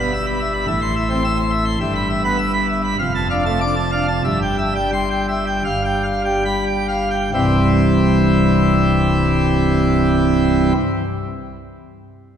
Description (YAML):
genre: classical, organ toccata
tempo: 65-109 BPM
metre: 4/4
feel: straight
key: C major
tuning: A4 = 440 Hz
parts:
  - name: pipe organ, plenum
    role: solo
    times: 0.0-10.7 s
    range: C1 to E6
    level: -16 LUFS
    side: equal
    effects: none
room: wet church reverb, RT60 2.7 s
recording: heard from further back in the room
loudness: -15 LUFS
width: side -8 dB against mid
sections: 0.0-7.3 A section; 7.3-11.0 B section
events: slowing down 0.7-7.3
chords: 0.0 Em/G; 0.7 Am; 1.8 Em/G; 3.0 Dm/F; 4.2 C/G; 5.6 G7; 7.3 C